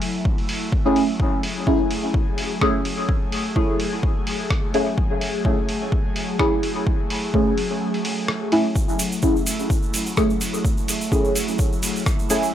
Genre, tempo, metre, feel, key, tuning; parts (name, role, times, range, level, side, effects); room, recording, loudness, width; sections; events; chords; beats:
dub techno; 127 BPM; 4/4; swing 55% on 16ths; F# minor; A4 = 438 Hz
airy breathy pad; sustained chords; 0.0-12.5 s; F#3 to G#4; -28 LUFS; equal; chorus, phaser, sidechain pumping
lo-fi sampler-style drum kit; drums; 0.0-12.4 s; hi-hat, rim click; -29 LUFS; equal; overdrive, studio reverb
electronic kick drum; drums; 0.3-12.2 s; -22 LUFS; equal; overdrive, studio reverb
deep mellow chord stab; stabs; 0.9-12.4 s; A3 to G#4; -22 LUFS; equal; chorus, phaser, sidechain pumping, dub echo
egg shaker; percussion; 8.8-12.5 s; -29 LUFS; right 3 dB
digital ambience; dry, gritty hardware recording, transformer saturation; -19 LUFS; side -10 dB against mid
0.0-12.5 A section
kick drops out 7.8-8.8
0.0 F#m7
0.25 0.72 | 1.20 1.67 2.14 2.62 | 3.09 3.56 4.03 4.50 | 4.98 5.45 5.92 6.39 | 6.87 7.34 7.81 8.28 | 8.76 9.23 9.70 10.17 | 10.65 11.12 11.59 12.06 | 12.54